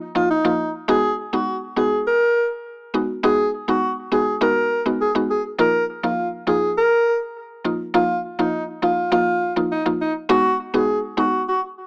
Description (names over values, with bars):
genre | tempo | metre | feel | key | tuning
afrobeats | 102 BPM | 4/4 | straight | unclear | A4 = 444 Hz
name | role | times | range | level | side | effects
mallet-like synth pluck | accompaniment | 0.0-11.4 s | E#3 to F#4 | -25 LUFS | equal | chorus, cassette tape
warm alto saxophone | melody | 0.2-11.6 s | D#4 to A#4 | -22 LUFS | equal | analog delay
room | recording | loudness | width
moderate small room reverb, RT60 0.5 s | home recording on cassette, small speaker sound | -21 LUFS | mono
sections
0.9-10.3 A section; 10.3-11.9 B section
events
none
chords
0.0 D#sus2; 0.9 B6; 5.6 D#sus2; 10.3 B6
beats
0.29 | 0.88 1.47 2.06 2.65 | 3.23 3.82 4.41 5.00 | 5.59 6.18 6.76 7.35 | 7.94 8.53 9.12 9.71 | 10.29 10.88 11.47